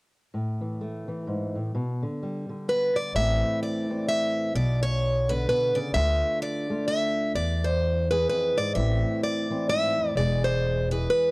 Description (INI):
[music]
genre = acoustic folk duo or small band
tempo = 128 BPM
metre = 3/4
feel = swing 59% on 8ths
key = A harmonic minor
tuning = A4 = 439 Hz
[part]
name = fingerpicked steel-string acoustic guitar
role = accompaniment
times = 0.3-11.3 s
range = E2 to G#4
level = -30 LUFS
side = equal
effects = none
[part]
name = picked plugged-in steel-string acoustic guitar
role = melody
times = 2.7-11.3 s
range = B4 to E5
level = -25 LUFS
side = equal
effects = none
[part]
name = upright bass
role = bass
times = 3.1-11.1 s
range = E1 to E2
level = -26 LUFS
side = equal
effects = none
[sound]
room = light reverb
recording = dry, gritty hardware recording, transformer saturation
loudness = -23 LUFS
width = side -24 dB against mid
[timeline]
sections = 0.3-3.2 A section; 3.2-11.3 B section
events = none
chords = 0.3 A5; 1.7 G/B; 3.2 Am; 4.6 Bmadd9; 6.0 Dm; 7.4 E; 8.8 Am; 10.2 E